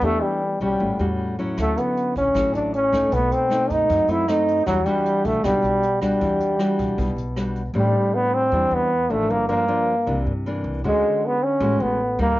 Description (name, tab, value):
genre	bossa nova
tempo	156 BPM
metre	4/4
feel	straight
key	E minor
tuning	A4 = 440 Hz
part	warm trombone	melody	0.0-12.4 s	F#3 to E4	-20 LUFS	equal	cassette tape, plate reverb
part	nylon-string guitar	accompaniment	0.0-12.4 s	G2 to G4	-25 LUFS	left 1 dB	cassette tape, plate reverb
part	upright bass	bass	0.0-12.4 s	G1 to G2	-28 LUFS	equal	none
part	jazz brush drum kit	drums	1.6-7.6 s	hi-hat, kick drum, rim click	-35 LUFS	equal	cassette tape
room	moderate studio reverb, RT60 0.6 s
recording	home recording on cassette, nothing above 7.4 kHz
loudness	-19 LUFS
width	side -16 dB against mid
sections	0.0-7.8 A section; 7.8-12.4 B section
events	none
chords	0.0 Em7; 0.8 A6; 1.6 Dmaj9; 3.1 B7b9; 4.7 Em9; 7.8 Am11; 9.3 Gm7; 10.1 C9; 10.8 Dmaj7#11